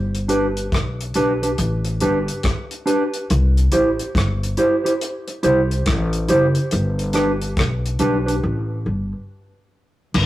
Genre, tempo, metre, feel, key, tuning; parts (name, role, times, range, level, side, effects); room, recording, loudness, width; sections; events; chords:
roots reggae; 70 BPM; 4/4; swing 62% on 16ths; G major; A4 = 440 Hz
upright bass; bass; 0.0-10.3 s; F#1 to C2; -20 LUFS; equal
cloth-damped thuddy drum kit; drums; 0.1-10.3 s; crash cymbal, hi-hat, kick drum, rim click; -24 LUFS; left 1 dB
mellow electric guitar; accompaniment; 0.3-8.3 s; D4 to C5; -20 LUFS; right 1 dB; spring reverb
moderate studio reverb, RT60 0.6 s; rough rehearsal-room recording, warm saturation; -17 LUFS; side -15 dB against mid
0.0-10.1 A section
break 8.4-10.1
0.0 G; 3.3 C; 6.7 G